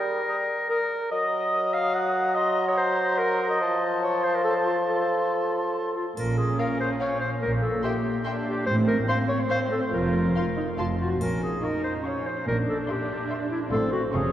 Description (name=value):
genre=cinematic, playful, whimsical film cue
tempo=144 BPM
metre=3/4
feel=straight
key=Bb minor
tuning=A4 = 440 Hz
part: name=warm clarinet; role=second line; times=0.0-14.3 s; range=E4 to Gb5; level=-26 LUFS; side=left 1 dB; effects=none
part: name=warm bassoon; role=accompaniment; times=0.0-6.0 s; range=F3 to G3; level=-29 LUFS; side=equal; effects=none
part: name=concert flute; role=second line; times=0.3-5.9 s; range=C6 to Eb6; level=-34 LUFS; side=left 1 dB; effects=none
part: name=warm oboe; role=second line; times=0.3-5.9 s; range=A5 to Bb5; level=-34 LUFS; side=equal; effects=none
part: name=muted studio viola section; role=accompaniment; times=6.2-14.3 s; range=Bb3 to Gb4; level=-30 LUFS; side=equal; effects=none
part: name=muted studio cello section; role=bass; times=6.2-14.3 s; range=F2 to Bb2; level=-30 LUFS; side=right 1 dB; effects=none
part: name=muted studio double bass section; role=bass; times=6.2-14.3 s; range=F1 to Bb1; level=-30 LUFS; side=right 2 dB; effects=none
part: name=triangle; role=percussion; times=6.2-7.0, 11.2-12.0 s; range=none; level=-50 LUFS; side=left 2 dB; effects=none
part: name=muted studio violin section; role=melody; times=6.6-14.3 s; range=F5 to Db6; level=-39 LUFS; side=left 2 dB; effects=none
part: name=muted symphonic violin section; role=second line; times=6.6-14.3 s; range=Db5 to C6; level=-38 LUFS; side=left 1 dB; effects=none
room=wet cathedral reverb, RT60 4.6 s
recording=worn, warbling old tape, cassette tape, warbly pitch drift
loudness=-23 LUFS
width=side -11 dB against mid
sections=0.0-6.2 A section; 6.2-14.3 B section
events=none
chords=0.0 Eb/G (rootless); 1.1 Ebm/Gb; 3.6 F; 6.2 Bbm; 7.4 C7(no3)/Bb (rootless); 8.7 F/A (rootless); 9.9 Fsus4; 10.8 N.C.; 11.2 Bbm; 12.5 C7/Bb; 13.7 F/A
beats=0.28 0.70 | 1.12 1.53 1.95 | 2.37 2.78 3.20 | 3.62 4.04 4.46 | 4.88 5.31 5.74 | 6.17 6.59 7.01 | 7.42 7.84 8.26 | 8.67 9.09 9.51 | 9.94 10.36 10.79 | 11.22 11.64 12.06 | 12.48 12.89 13.30 | 13.72 14.13